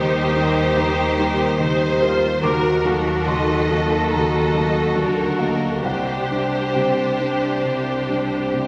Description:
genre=cinematic, emotional film score for orchestra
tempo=66-74 BPM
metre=4/4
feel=rubato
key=unclear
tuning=A4 = 439 Hz
part: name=rich symphonic violin section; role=melody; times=0.0-8.7 s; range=Bb4 to Eb5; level=-29 LUFS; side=equal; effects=none
part: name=warm symphonic violin section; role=second line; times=0.0-8.7 s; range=G4 to C5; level=-26 LUFS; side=equal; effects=none
part: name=felt-muted upright piano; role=accompaniment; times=0.0-8.7 s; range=C2 to Eb6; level=-26 LUFS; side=equal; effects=none
part: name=rich symphonic viola section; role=accompaniment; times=0.0-8.7 s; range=D4 to Gb4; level=-30 LUFS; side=equal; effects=none
part: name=mellow French horn section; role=sustained chords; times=0.0-8.7 s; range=Bb3 to C5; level=-28 LUFS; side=equal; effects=none
part: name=rich symphonic cello section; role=bass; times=0.0-8.7 s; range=C3 to Eb3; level=-29 LUFS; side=equal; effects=none
part: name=rich symphonic double bass section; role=bass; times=0.0-8.7 s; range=C2 to Eb2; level=-30 LUFS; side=equal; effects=none
room=wet scoring stage reverb, RT60 1.9 s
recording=none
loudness=-20 LUFS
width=mono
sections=0.0-8.7 A section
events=none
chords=0.0 Eb; 2.4 Ebm; 5.8 Csus2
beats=0.78 1.61 | 2.43 3.27 4.11 4.95 | 5.84 6.74 7.64 8.53

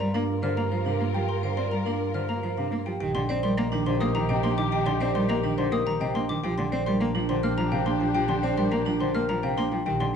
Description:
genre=classical, minimalist pattern music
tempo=105 BPM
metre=3/4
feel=straight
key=Bb major from 3.0 s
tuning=A4 = 441 Hz
part: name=marimba with soft mallets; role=melody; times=0.0-10.0 s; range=Bb4 to G5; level=-32 LUFS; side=left 11 dB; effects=none
part: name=dark clarinet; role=second line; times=0.0-10.2 s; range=D4 to Bb4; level=-36 LUFS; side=right 4 dB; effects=none
part: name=rich cello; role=accompaniment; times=0.0-10.1 s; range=C3 to C4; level=-29 LUFS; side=equal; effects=none
part: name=dark symphonic string section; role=sustained chords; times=0.0-10.2 s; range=D4 to C5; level=-34 LUFS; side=left 5 dB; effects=none
part: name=vibraphone with hard mallets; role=arpeggios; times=0.0-10.0 s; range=D4 to C5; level=-32 LUFS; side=right 7 dB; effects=none
part: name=xylophone with rubber mallets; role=arpeggios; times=0.0-10.2 s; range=G5 to F6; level=-33 LUFS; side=left 4 dB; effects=none
part: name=warm double bass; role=bass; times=0.0-10.2 s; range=Bb1 to G2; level=-30 LUFS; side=right 4 dB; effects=none
room=moderate large studio reverb, RT60 1.1 s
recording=dark, warm production, nothing above 10.4 kHz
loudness=-23 LUFS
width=side -7 dB against mid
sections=0.0-3.0 A section; 3.0-10.2 B section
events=none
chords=0.0 Gm7; 3.0 Eb6/Bb; 6.4 Bb6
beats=0.15 0.72 | 1.29 1.86 2.43 | 3.00 3.58 4.15 | 4.72 5.29 5.86 | 6.43 7.00 7.58 | 8.15 8.72 9.29 | 9.86

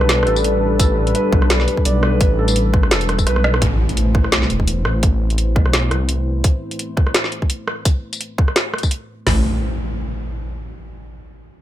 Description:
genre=half-time drum and bass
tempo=170 BPM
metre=4/4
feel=swing 55% on 16ths, half-time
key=A minor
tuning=A4 = 440 Hz
part: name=dark analog pad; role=sustained chords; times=0.0-9.4 s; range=G3 to C5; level=-23 LUFS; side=left 1 dB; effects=chorus, sidechain pumping
part: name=felt-muted upright piano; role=arpeggios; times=0.0-3.6 s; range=A4 to D5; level=-24 LUFS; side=right 1 dB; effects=vintage 12-bit sampler grit, ping-pong delay
part: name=dark detuned saw bass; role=bass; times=0.0-6.4, 9.3-9.4 s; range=E1 to C2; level=-18 LUFS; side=equal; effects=none
part: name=drum and bass drum kit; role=drums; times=0.0-9.0 s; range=hi-hat, rim click, snare drum, tambourine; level=-20 LUFS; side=equal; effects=none
part: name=drum and bass drum kit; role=drums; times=0.8-9.4 s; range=hi-hat, kick drum, snare drum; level=-16 LUFS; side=equal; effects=none
part: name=impact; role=sound effects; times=3.6-5.0, 9.3-10.7 s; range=none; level=-24 LUFS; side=equal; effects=none
room=light reverb, digital ambience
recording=none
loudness=-15 LUFS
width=side -12 dB against mid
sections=0.0-3.6 A section; 3.6-9.3 B section; 9.3-10.7 C section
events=drop 0.0-3.6; drum fill 3.3-3.6; impact 3.6-5.0; filter sweep on analog synth pad 3.6-9.3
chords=0.0 Gadd9; 3.6 Am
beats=0.09 0.44 | 0.80 1.15 1.50 1.85 | 2.21 2.56 2.91 3.27 | 3.62 3.97 4.33 4.68 | 5.03 5.38 5.74 6.09 | 6.44 6.80 7.15 7.50 | 7.86 8.21 8.56 8.91 | 9.27 9.62 9.97 10.33

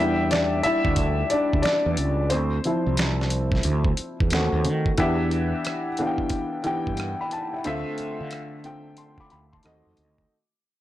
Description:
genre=R&B, neo-soul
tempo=90 BPM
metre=4/4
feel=swing 64% on 16ths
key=unclear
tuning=A4 = 439 Hz
part: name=dark upright piano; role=accompaniment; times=0.0-10.3 s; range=D3 to D6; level=-24 LUFS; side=left 1 dB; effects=none
part: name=fretless electric bass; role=bass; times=0.0-10.2 s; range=C2 to D#3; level=-25 LUFS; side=right 1 dB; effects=transformer saturation, lush chorus
part: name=dusty soul sampler-style drum kit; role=drums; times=0.3-10.3 s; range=finger snaps, hi-hat, kick drum, rim click, snare drum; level=-26 LUFS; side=right 1 dB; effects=none
room=light reverb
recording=blown-out, overdriven recording, overdrive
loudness=-22 LUFS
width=side -14 dB against mid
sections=0.0-5.0 A section; 5.0-10.3 B section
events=upright piano solo 0.0-5.0; fade-out 5.0-10.3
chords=0.0 Em7; 2.3 Dm7; 4.3 D#dim7; 5.0 Em7; 7.6 Dm7; 9.6 D#dim7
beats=0.31 0.98 1.64 | 2.31 2.98 3.64 4.31 | 4.98 5.64 6.31 6.98 | 7.64 8.31 8.98 9.64

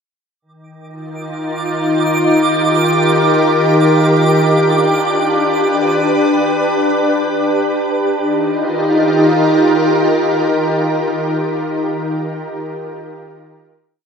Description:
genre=ambient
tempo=free time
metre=none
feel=none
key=Eb major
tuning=A4 = 445 Hz
part: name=soft additive organ-like pad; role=sustained chords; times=1.0-11.9 s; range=Eb3 to B4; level=-13 LUFS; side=equal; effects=ensemble chorus, built-in reverb
part: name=twinkling granular texture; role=texture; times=1.2-7.9 s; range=D6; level=-21 LUFS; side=right 5 dB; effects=built-in reverb
room=wet concert hall reverb, RT60 2.2 s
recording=none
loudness=-12 LUFS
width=side -6 dB against mid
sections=0.4-7.9 A section; 7.9-11.7 final chord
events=none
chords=0.4 Ebadd9; 4.2 G; 7.9 Ebadd9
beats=free time

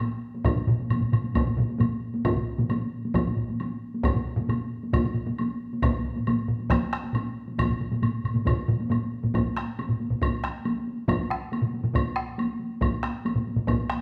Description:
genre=japanese traditional, taiko drum ensemble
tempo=136 BPM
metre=4/4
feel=straight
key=none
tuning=none
part: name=taiko ensemble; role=percussion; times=0.0-14.0 s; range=none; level=-32 LUFS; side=equal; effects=none
part: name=woodblock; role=percussion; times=0.0-13.8 s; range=none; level=-39 LUFS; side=equal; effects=none
part: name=taiko ensemble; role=percussion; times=0.4-14.0 s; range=none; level=-31 LUFS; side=equal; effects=none
part: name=taiko ensemble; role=percussion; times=0.4-13.8 s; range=none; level=-30 LUFS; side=equal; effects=none
part: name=taiko ensemble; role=percussion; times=0.5-12.3 s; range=none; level=-31 LUFS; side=equal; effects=none
room=wet large studio reverb, RT60 1.1 s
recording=band playing live in one room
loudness=-27 LUFS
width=mono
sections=0.0-9.3 A section; 9.3-14.0 B section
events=speeding up 0.0-14.0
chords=none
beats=0.00 | 0.45 0.91 1.36 1.80 | 2.25 2.70 3.15 3.60 | 4.04 4.49 4.93 5.38 | 5.82 6.26 6.71 7.15 | 7.59 8.03 8.47 8.91 | 9.35 9.78 10.22 10.66 | 11.09 11.53 11.96 12.39 | 12.83 13.26 13.69

